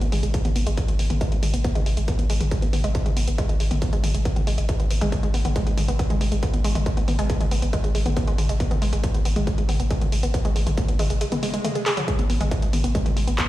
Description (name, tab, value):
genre	driving peak-time techno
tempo	138 BPM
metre	4/4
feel	straight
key	G# minor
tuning	A4 = 440 Hz
part	wide unison pluck	riff	0.0-13.5 s	F#3 to G#4	-28 LUFS	equal	cassette tape, sidechain pumping, ping-pong delay
part	techno drum kit	drums	0.0-13.5 s	handclaps, hi-hat, toms	-29 LUFS	equal	sidechain pumping on hats, sidechain pumping on toms, sidechain pumping on cymbals
part	saturated sub bass	bass	0.1-13.4 s	G#1	-25 LUFS	equal	tube saturation, sidechain pumping, low-pass filter
part	electronic kick drum	drums	0.3-13.5 s	none	-24 LUFS	equal	distortion
part	swell	sound effects	11.3-12.1 s	none	-32 LUFS	right 1 dB	none
room	light reverb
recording	played on a big sound system in a bare room, stone room reverb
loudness	-20 LUFS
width	side -15 dB against mid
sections	0.0-13.5 A section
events	filter sweep on synth arpeggio sound 0.0-13.5; swell 11.3-12.1; drum fill 11.9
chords	0.0 G#m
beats	0.34 0.78 1.21 | 1.65 2.08 2.52 2.95 | 3.38 3.82 4.25 4.69 | 5.12 5.56 5.99 6.43 | 6.86 7.30 7.73 8.17 | 8.60 9.04 9.47 9.91 | 10.34 10.78 11.21 11.64 | 12.08 12.52 12.95 13.38